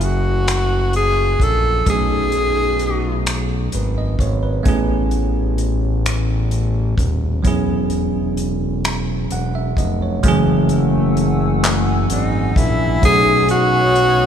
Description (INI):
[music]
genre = slow six-eight R&B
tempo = 43 BPM (dotted quarters)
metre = 6/8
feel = straight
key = F# dorian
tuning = A4 = 439 Hz
[part]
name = breathy tenor saxophone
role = melody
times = 0.0-3.2, 12.1-14.3 s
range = D#4 to A4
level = -17 LUFS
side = left 1 dB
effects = none
[part]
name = bell-like tine electric piano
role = accompaniment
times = 0.0-14.3 s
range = E3 to G#5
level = -21 LUFS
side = right 3 dB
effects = none
[part]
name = smooth synth bass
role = bass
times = 0.0-14.3 s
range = D#1 to B1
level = -19 LUFS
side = left 1 dB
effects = none
[part]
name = damped 70s drum kit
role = drums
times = 0.0-14.2 s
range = finger snaps, handclaps, hi-hat, kick drum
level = -22 LUFS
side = equal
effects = none
[part]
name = hollow soft pad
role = sustained chords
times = 10.7-14.3 s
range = A3 to E6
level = -24 LUFS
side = left 4 dB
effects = chorus
[sound]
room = moderate church reverb, RT60 3.8 s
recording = recorded in a church or concert hall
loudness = -15 LUFS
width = side -8 dB against mid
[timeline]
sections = 0.0-10.2 A section; 10.2-14.3 B section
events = none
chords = 0.0 F#m9; 1.9 B13; 4.7 Amaj9; 7.4 E6; 10.2 F#m9; 13.0 B13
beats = 0.47 | 1.86 3.26 | 4.66 6.05 | 7.45 8.84 | 10.24 11.63 | 13.03